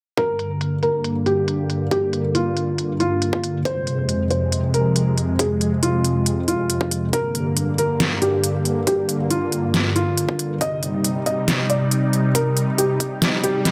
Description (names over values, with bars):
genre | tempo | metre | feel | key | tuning
heavy wobble dubstep | 138 BPM | 4/4 | half-time | G phrygian | A4 = 440 Hz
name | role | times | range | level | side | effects
felt-muted upright piano | melody | 0.2-13.7 s | F4 to Eb5 | -25 LUFS | equal | tape echo
supersaw pad | sustained chords | 0.2-13.7 s | F2 to Eb4 | -24 LUFS | equal | phaser, sidechain pumping, low-pass filter
dubstep drum kit | drums | 0.2-13.7 s | hi-hat, snare drum | -25 LUFS | equal | low-pass filter on hats, small room ambience, low-pass filter on snare
electronic kick drum | drums | 0.2-13.1 s | none | -30 LUFS | equal | high-pass filter on kick, small room ambience
swell | sound effects | 13.4-13.7 s | none | -30 LUFS | equal | none
room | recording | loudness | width
moderate lush hall reverb, RT60 1.9 s | none | -21 LUFS | mono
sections
0.2-13.7 A section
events
filter sweep on drum 0.2-13.7; filter sweep on supersaw synth 0.2-13.7; swell 13.4-13.7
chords
0.2 Gm; 3.7 Fm; 7.1 Gm; 10.6 Cm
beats
| 0.17 0.61 1.04 1.48 | 1.91 2.35 2.78 3.22 | 3.65 4.09 4.52 4.96 | 5.39 5.83 6.26 6.70 | 7.13 7.57 8.00 8.44 | 8.87 9.31 9.74 10.18 | 10.61 11.04 11.48 11.91 | 12.35 12.78 13.22 13.65